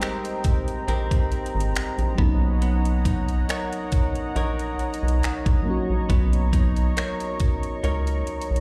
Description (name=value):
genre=contemporary R&B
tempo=69 BPM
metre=4/4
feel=swing 54% on 16ths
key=unclear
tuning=A4 = 438 Hz
part: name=mellow FM electric piano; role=accompaniment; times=0.0-8.6 s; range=F#3 to F#4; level=-34 LUFS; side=equal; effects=chorus, phaser
part: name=warm analog pad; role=sustained chords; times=0.0-8.6 s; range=C5 to C#6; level=-34 LUFS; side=equal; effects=chorus
part: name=direct-recorded clean electric guitar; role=arpeggios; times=0.0-8.6 s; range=Ab3 to C#5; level=-34 LUFS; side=equal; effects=tape echo
part: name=trap drum kit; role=drums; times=0.0-8.6 s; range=finger snaps, hi-hat, kick drum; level=-26 LUFS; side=equal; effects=none
part: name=rubbery square bass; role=bass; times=0.9-8.6 s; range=Ab1 to C#2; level=-25 LUFS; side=equal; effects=none
room=digital ambience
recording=played on a big sound system in a bare room, large studio reverb, lossy compression artefacts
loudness=-24 LUFS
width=mono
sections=0.0-8.6 A section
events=none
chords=0.0 Abmaj9; 2.2 Bmaj9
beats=0.01 0.88 1.75 | 2.62 3.49 4.36 5.23 | 6.10 6.97 7.84